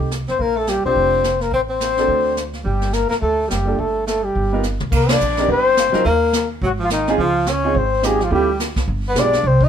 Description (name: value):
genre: jazz, small-group swing and bop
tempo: 212 BPM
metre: 4/4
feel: swing 59% on 8ths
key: G minor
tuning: A4 = 439 Hz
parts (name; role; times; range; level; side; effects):
- warm grand piano; accompaniment; 0.0-9.3 s; F#3 to A#4; -22 LUFS; right 4 dB; none
- upright bass; bass; 0.0-9.7 s; F1 to F2; -22 LUFS; right 1 dB; none
- jazz brush drum kit; drums; 0.0-9.7 s; brushed snare drum, crash cymbal, hi-hat, kick drum, ride cymbal, snare drum, toms; -24 LUFS; right 1 dB; none
- mellow flugelhorn; melody; 0.3-9.7 s; Eb4 to Eb5; -19 LUFS; left 4 dB; none
- warm tenor saxophone; second line; 0.3-9.7 s; Eb3 to Eb4; -24 LUFS; right 2 dB; none
room: light reverb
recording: minimal, uncompressed stereo recording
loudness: -16 LUFS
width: side -8 dB against mid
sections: 0.0-4.9 A section; 4.9-9.7 B section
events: drum fill 4.6; band accent 5.1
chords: 0.4 Bb6; 1.5 Amadd11; 2.1 D7; 2.7 Gmadd9; 4.4 G7alt; 4.9 Cm9; 6.1 Eb5; 6.6 Ab; 7.2 Dbmaj7; 8.3 Dm11; 8.9 G7b9